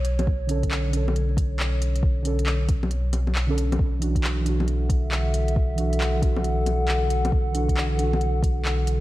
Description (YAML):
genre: future garage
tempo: 136 BPM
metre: 4/4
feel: swing 65% on 16ths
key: unclear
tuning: A4 = 440 Hz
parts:
  - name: warbly tape-like pad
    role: sustained chords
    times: 0.0-9.0 s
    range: D3 to F#5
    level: -30 LUFS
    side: left 1 dB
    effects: chorus, built-in reverb, sidechain pumping
  - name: warm sub bass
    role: bass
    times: 0.0-9.0 s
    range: B1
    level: -24 LUFS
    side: equal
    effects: sidechain pumping
  - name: organic electronic drum kit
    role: drums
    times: 0.0-9.0 s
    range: bongos, handclaps, hi-hat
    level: -30 LUFS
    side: left 1 dB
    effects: none
  - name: electronic kick drum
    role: drums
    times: 0.3-8.5 s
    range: none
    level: -23 LUFS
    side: equal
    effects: none
  - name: muted felt-like synth keys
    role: accompaniment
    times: 0.5-9.0 s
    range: D3 to A4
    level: -30 LUFS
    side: right 2 dB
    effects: chorus, vintage 12-bit sampler grit, sidechain pumping, analog delay
room: light reverb, digital ambience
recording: vinyl crackle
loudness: -21 LUFS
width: side -16 dB against mid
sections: 0.0-9.0 A section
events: none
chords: 0.0 Bm9; 3.8 Dadd9/B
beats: | 0.27 0.71 1.15 1.59 | 2.04 2.48 2.92 3.36 | 3.80 4.24 4.68 5.12 | 5.57 6.01 6.45 6.89 | 7.33 7.77 8.21 8.65